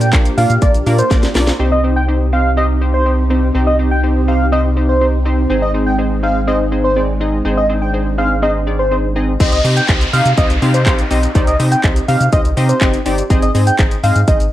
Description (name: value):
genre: dance-pop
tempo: 123 BPM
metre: 4/4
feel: straight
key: C minor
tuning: A4 = 437 Hz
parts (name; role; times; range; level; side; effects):
- octave-doubled lead; melody; 0.0-14.4 s; C5 to G5; -18 LUFS; equal; chorus, sidechain pumping, cassette tape, analog delay
- funky polysynth comp; accompaniment; 0.0-14.5 s; Bb3 to F5; -19 LUFS; equal; chorus, sidechain pumping, cassette tape
- string machine, violas; sustained chords; 0.0-9.4 s; C3 to G4; -22 LUFS; right 1 dB; ensemble chorus, sidechain pumping, cassette tape
- round analog bass; bass; 0.0-14.5 s; F#1 to C3; -16 LUFS; equal; sidechain pumping
- house drum kit; drums; 0.0-1.6, 9.4-14.5 s; crash cymbal, handclaps, hi-hat, kick drum, shaker, snare drum; -15 LUFS; equal; none
- downlifter; sound effects; 9.4-13.3 s; none; -24 LUFS; equal; none
room: light reverb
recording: home recording on cassette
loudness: -12 LUFS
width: side -13 dB against mid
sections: 0.0-1.6 A section; 1.6-9.4 B section; 9.4-14.5 A section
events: drop 0.0-1.6, 9.4-14.5; drum fill 1.1-1.6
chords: 0.0 Bb; 1.6 Cm; 5.5 Ab; 9.4 Cm; 13.3 Ab